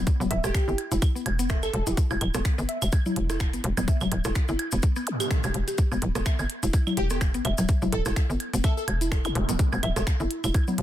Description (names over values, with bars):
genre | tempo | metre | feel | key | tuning
minimal techno | 126 BPM | 4/4 | swing 56% on 16ths | E minor | A4 = 440 Hz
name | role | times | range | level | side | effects
mallet-like synth pluck | riff | 0.0-10.7 s | B3 to E5 | -32 LUFS | equal | chorus, sidechain pumping, dub echo
hollow knocking FM bass | bass | 0.0-10.8 s | D1 to G1 | -27 LUFS | equal | tube saturation, sidechain pumping
electronic kick drum | drums | 0.1-10.7 s | none | -23 LUFS | equal | overdrive
minimal click drum kit | drums | 0.1-10.8 s | finger snaps, hi-hat | -35 LUFS | equal | overdrive, soft clipping on snare
maracas | percussion | 0.1-10.8 s | none | -38 LUFS | left 5 dB | none
electronic congas, rim click and claves | percussion | 0.2-10.8 s | none | -32 LUFS | equal | soft clipping on snare, dub echo
plucky unison lead | melody | 0.4-2.0, 7.0-8.8 s | G4 to A4 | -33 LUFS | right 1 dB | lush chorus, dub echo
zap | sound effects | 5.1-5.2, 9.2-9.4 s | none | -33 LUFS | equal | none
room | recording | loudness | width
digital ambience | dense, heavily limited modern master | -23 LUFS | side -12 dB against mid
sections
0.0-10.8 A section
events
none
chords
0.0 E5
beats
| 0.07 0.55 1.02 1.50 | 1.97 2.45 2.93 3.40 | 3.88 4.35 4.83 5.31 | 5.78 6.26 6.74 7.21 | 7.69 8.16 8.64 9.12 | 9.59 10.07 10.54